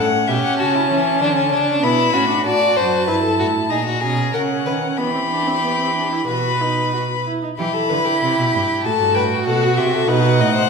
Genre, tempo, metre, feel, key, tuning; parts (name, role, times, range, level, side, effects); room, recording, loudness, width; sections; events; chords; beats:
classical, baroque-style fugue for string quartet; 96 BPM; 4/4; straight; E minor; A4 = 440 Hz
rich violin; melody; 0.0-10.7 s; E5 to B5; -20 LUFS; left 4 dB
rich violin; second line; 0.0-10.7 s; C#4 to D#5; -21 LUFS; left 3 dB
warm viola; accompaniment; 0.0-10.7 s; B3 to F#4; -22 LUFS; right 3 dB
rich cello; bass; 0.0-10.7 s; F#2 to E3; -23 LUFS; right 4 dB
wet recital hall reverb, RT60 1.3 s; recorded in a church or concert hall; -16 LUFS; side -5 dB against mid
0.0-7.6 A section; 7.6-10.7 B section
0.0 F#m/A; 1.2 D; 2.5 Am; 3.7 F#/A#; 5.0 Em; 6.3 B; 7.6 Em; 8.8 F#dim; 10.1 B7
0.59 1.21 1.83 | 2.45 3.08 3.71 4.34 | 4.99 5.64 6.29 6.93 | 7.58 8.22 8.85 9.46 | 10.08